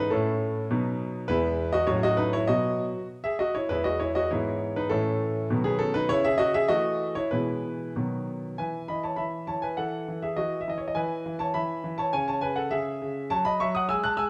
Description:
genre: classical-period piano sonatina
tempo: 101 BPM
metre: 2/4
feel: rubato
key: E major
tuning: A4 = 440 Hz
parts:
  - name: clear concert grand piano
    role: solo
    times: 0.0-14.3 s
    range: E2 to F#6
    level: -27 LUFS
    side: equal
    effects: none
room: moderate recital hall reverb, RT60 1.6 s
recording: dark, warm production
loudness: -27 LUFS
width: mono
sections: 0.0-8.6 A section; 8.6-14.3 B section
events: none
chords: 0.1 A; 0.7 B; 1.3 E; 1.9 F#m/A; 2.5 B; 3.7 E; 4.3 E/G#; 4.9 A; 5.5 B; 6.1 A/C#; 7.3 E/B; 8.0 B; 8.6 E5; 9.8 Emaj7sus2; 11.0 E5; 12.1 C#m; 13.3 F#5

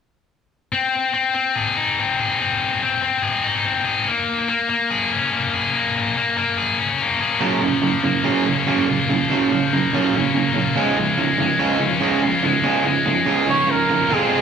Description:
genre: rock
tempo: 143 BPM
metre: 4/4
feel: straight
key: unclear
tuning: A4 = 438 Hz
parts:
  - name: scooped high-gain guitar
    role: riff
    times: 0.7-14.4 s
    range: F3 to Ab4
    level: -19 LUFS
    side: left 4 dB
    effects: distortion
  - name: raw garage guitar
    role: riff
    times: 7.4-14.4 s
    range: F2 to F4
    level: -19 LUFS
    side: right 5 dB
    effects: overdrive
  - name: bright trumpet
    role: melody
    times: 13.5-14.4 s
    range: Ab4 to Db5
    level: -19 LUFS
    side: right 4 dB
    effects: none
room: wet studio ambience, RT60 0.5 s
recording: band playing live in one room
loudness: -17 LUFS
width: side -7 dB against mid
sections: 0.7-14.1 A section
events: none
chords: 0.7 Ab/C; 4.1 Bbm7; 7.4 Gbmaj7; 10.8 Db

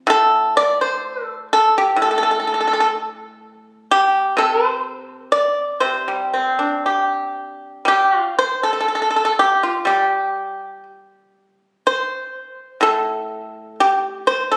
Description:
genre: chinese traditional, Chinese solo plucked strings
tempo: 62 BPM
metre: 4/4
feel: rubato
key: C zhi mode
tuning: A4 = 437 Hz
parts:
  - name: pipa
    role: solo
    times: 0.0-14.6 s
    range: A2 to D5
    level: -18 LUFS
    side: equal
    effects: none
room: moderate scoring stage reverb, RT60 1.6 s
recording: recorded on a phone in the room, studio reverb, compression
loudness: -18 LUFS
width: mono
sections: 0.0-14.6 A section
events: none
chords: none

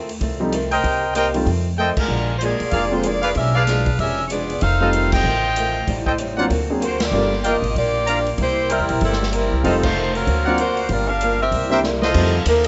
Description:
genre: jazz, big band swing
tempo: 191 BPM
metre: 4/4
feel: swing 61% on 8ths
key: F mixolydian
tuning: A4 = 440 Hz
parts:
  - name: picked old ladder-braced acoustic guitar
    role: accompaniment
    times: 0.0-12.7 s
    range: F2 to G4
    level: -28 LUFS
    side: equal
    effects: none
  - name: upright bass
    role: bass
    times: 0.0-12.7 s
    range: F1 to F2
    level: -25 LUFS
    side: equal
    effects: none
  - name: swinging big-band drum kit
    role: drums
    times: 0.1-12.7 s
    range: crash cymbal, hi-hat, kick drum, ride cymbal, snare drum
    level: -30 LUFS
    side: equal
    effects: none
  - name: clear grand piano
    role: accompaniment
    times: 0.4-7.3, 9.6-12.3 s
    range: D3 to Ab4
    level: -25 LUFS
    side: equal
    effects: none
  - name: clear trumpet section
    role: stabs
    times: 0.7-12.4 s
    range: F4 to Bb5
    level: -24 LUFS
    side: equal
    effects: none
  - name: bright saxophone section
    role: melody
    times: 2.0-11.8 s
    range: F3 to G5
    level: -24 LUFS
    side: equal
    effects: none
  - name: clear saxophone section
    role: sustained chords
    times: 12.1-12.7 s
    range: Eb4 to F5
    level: -31 LUFS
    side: equal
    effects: none
  - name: warm tenor saxophone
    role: melody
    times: 12.5-12.7 s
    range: Bb3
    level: -18 LUFS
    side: equal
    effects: none
room: light reverb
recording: nothing above 7.9 kHz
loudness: -19 LUFS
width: mono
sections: 0.0-12.2 A section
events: drum fill 1.8-2.1, 11.8-12.2; band accent 1.9, 5.1, 7.0, 9.8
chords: 0.0 Cm7; 1.5 F7; 2.1 Bb7; 3.4 Bdim7; 4.6 F7; 5.9 Am7b5; 6.5 D7alt; 7.1 Gm7; 8.4 C7; 9.6 F7; 10.3 D7alt; 10.9 Gm7; 11.5 C7; 12.2 F7

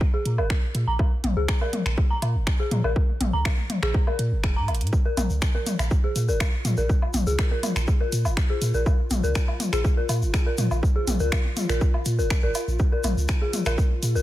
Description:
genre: minimal techno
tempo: 122 BPM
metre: 4/4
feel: straight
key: Bb minor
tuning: A4 = 440 Hz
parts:
  - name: electronic kick drum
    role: drums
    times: 0.0-13.9 s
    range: none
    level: -22 LUFS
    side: equal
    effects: overdrive
  - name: dark detuned synth bell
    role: riff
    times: 0.1-14.2 s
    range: Ab4 to Bb5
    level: -30 LUFS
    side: left 1 dB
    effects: chorus, sidechain pumping, dub echo
  - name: punchy sub bass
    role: bass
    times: 0.3-14.2 s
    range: F1 to Bb2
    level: -24 LUFS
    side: equal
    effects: sidechain pumping
  - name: house drum kit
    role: drums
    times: 0.3-14.1 s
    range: finger snaps, hi-hat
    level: -32 LUFS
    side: equal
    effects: overdrive
  - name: electronic woodblock and toms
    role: percussion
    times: 0.4-13.8 s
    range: none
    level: -30 LUFS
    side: left 2 dB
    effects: overdrive, tape echo
  - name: egg shaker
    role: percussion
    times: 4.9-14.2 s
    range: none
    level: -36 LUFS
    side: left 3 dB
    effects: none
  - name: swarming drone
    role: texture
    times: 5.7-14.2 s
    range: F4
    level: -37 LUFS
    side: left 1 dB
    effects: built-in reverb, sidechain pumping
room: little or no reverb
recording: none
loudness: -21 LUFS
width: side -15 dB against mid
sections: 0.0-14.2 A section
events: filter sweep on synth bell 0.0-14.2; drum fill 4.7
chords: 0.0 Bb5

